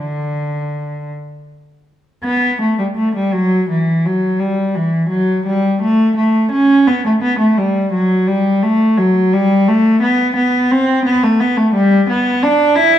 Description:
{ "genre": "classical, baroque-style suite movement for unaccompanied cello", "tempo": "57 BPM (dotted quarters)", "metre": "6/8", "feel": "rubato", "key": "unclear", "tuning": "A4 = 442 Hz", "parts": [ { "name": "warm cello", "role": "solo", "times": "0.0-13.0 s", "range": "D3 to E4", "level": "-12 LUFS", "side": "equal", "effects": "none" } ], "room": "moderate recital hall reverb, RT60 1.3 s", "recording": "dark, warm production", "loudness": "-12 LUFS", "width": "side -11 dB against mid", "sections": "0.0-2.2 A section; 2.2-13.0 B section", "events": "none", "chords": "none", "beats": "| 0.01 1.13 | 2.24 3.33 | 4.41 5.47 | 6.54 7.59 | 8.63 9.68 | 10.71 11.74 | 12.77" }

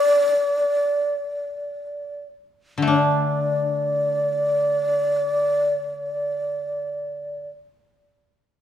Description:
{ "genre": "japanese traditional, Japanese chamber music", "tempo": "free time", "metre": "none", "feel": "none", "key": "unclear", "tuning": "A4 = 438 Hz", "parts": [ { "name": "breathy mellow long shakuhachi", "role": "melody", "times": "0.0-7.5 s", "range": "D5", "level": "-21 LUFS", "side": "equal", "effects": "none" }, { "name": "koto", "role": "accompaniment", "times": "2.8-7.5 s", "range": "D3 to D4", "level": "-23 LUFS", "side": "left 2 dB", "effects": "none" } ], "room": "light reverb", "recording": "minimal, uncompressed stereo recording", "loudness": "-20 LUFS", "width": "side -10 dB against mid", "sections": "0.0-2.9 A section; 2.9-7.8 B section", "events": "slowing down 0.0-2.9", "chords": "none", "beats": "free time" }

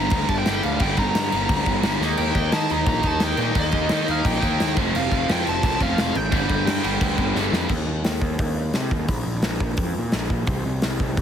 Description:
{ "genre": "punk rock", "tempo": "174 BPM", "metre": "4/4", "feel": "straight", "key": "G minor", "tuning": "A4 = 438 Hz", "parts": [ { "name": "biting lead guitar", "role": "melody", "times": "0.0-7.4 s", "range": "Eb5 to Bb5", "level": "-27 LUFS", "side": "equal", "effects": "overdrive, ping-pong delay" }, { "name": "distorted electric guitar", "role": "riff", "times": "0.0-7.7 s", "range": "F2 to Eb4", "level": "-24 LUFS", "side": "equal", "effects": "overdrive" }, { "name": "fuzz picked electric bass", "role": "bass", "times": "0.0-11.2 s", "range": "F1 to Eb3", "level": "-26 LUFS", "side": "equal", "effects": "overdrive" }, { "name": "big rock drum kit", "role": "drums", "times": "0.1-11.2 s", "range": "crash cymbal, hi-hat, kick drum, snare drum", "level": "-24 LUFS", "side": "equal", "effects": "none" } ], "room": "little or no reverb", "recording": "heavily compressed radio sound", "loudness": "-19 LUFS", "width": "side -8 dB against mid", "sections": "0.0-7.7 A section; 7.7-11.2 B section", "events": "drum fill 2.0, 7.4-7.7", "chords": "0.0 Gm; 2.0 Eb; 4.8 F5; 6.3 G5; 7.7 N.C.; 9.1 Bb5; 10.5 N.C.", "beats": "0.12 0.46 | 0.81 1.15 1.49 1.84 | 2.18 2.52 2.87 3.21 | 3.56 3.90 4.25 4.59 | 4.93 5.28 5.62 5.97 | 6.32 6.66 7.01 7.35 | 7.70 8.05 8.39 8.74 | 9.09 9.44 9.78 10.13 | 10.48 10.82 11.17" }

